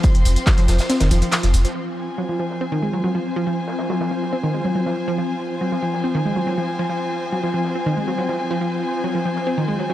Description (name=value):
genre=driving peak-time techno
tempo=140 BPM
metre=4/4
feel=straight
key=F phrygian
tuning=A4 = 438 Hz
part: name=wide unison pluck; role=riff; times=0.0-9.9 s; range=Eb3 to C4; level=-23 LUFS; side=right 1 dB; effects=tube saturation, sidechain pumping, analog delay
part: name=swarming drone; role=drone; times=0.0-9.9 s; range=F3 to C4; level=-28 LUFS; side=left 3 dB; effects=built-in reverb, sidechain pumping
part: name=big rock drum kit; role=drums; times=0.0-9.9 s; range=ride cymbal, snare drum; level=-36 LUFS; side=right 1 dB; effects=none
part: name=electronic kick drum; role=drums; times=0.0-0.6 s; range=none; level=-17 LUFS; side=equal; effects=none
part: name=techno drum kit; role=drums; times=0.0-1.7 s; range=handclaps, hi-hat, ride cymbal, tambourine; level=-25 LUFS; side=equal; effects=sidechain pumping on hats, low-pass filter on hats, sidechain pumping on cymbals, low-pass filter on cymbals, sidechain pumping on perc, low-pass filter on perc, low-pass filter on snare, low-pass filter on room
part: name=rich chamber string section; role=texture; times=0.0-9.9 s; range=F4 to C6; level=-26 LUFS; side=left 1 dB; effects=sidechain pumping
part: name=warm sub bass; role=bass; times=0.1-1.6 s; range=F1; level=-16 LUFS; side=equal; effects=tube saturation, sidechain pumping, low-pass filter
room=light reverb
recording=dry, gritty hardware recording, cassette tape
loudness=-19 LUFS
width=side -13 dB against mid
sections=0.0-1.8 A section; 1.8-9.9 B section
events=drop 0.0-1.8; kick drops out 0.9-1.8; band accent 1.3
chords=0.0 F5; 1.8 Fm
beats=| 0.04 0.47 0.90 1.32 | 1.75 2.18 2.61 3.04 | 3.47 3.90 4.33 4.75 | 5.18 5.61 6.04 6.47 | 6.90 7.33 7.75 8.18 | 8.61 9.04 9.47 9.90